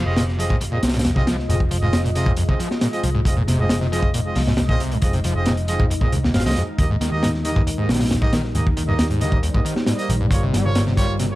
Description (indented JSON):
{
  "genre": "breakbeat, breaks",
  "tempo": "136 BPM",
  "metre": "4/4",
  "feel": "straight",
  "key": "F minor",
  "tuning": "A4 = 442 Hz",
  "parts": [
    { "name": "deep dark ambient pad", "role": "sustained chords", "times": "0.0-11.4 s", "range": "G3 to Eb5", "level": "-29 LUFS", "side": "left 2 dB", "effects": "chorus, built-in reverb, sidechain pumping" },
    { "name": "screaming distorted acid line", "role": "riff", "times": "0.0-11.3 s", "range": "Eb2 to G3", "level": "-24 LUFS", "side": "equal", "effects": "distortion, wide subtle chorus" },
    { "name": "vintage muted picked electric bass", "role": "bass", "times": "0.0-11.4 s", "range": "F1 to Eb2", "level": "-23 LUFS", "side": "equal", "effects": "none" },
    { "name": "bright brass ensemble", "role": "stabs", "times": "0.1-11.4 s", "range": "Bb3 to F5", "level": "-27 LUFS", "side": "right 2 dB", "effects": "dub echo" },
    { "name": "crunchy breakbeat drum kit", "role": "drums", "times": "0.2-11.3 s", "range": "hi-hat, kick drum, snare drum", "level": "-21 LUFS", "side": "equal", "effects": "none" }
  ],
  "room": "light reverb",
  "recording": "vinyl crackle",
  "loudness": "-17 LUFS",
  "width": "side -17 dB against mid",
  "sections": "0.0-11.4 A section",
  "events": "none",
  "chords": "0.0 Fm7; 6.8 Eb; 10.3 Gm7b5"
}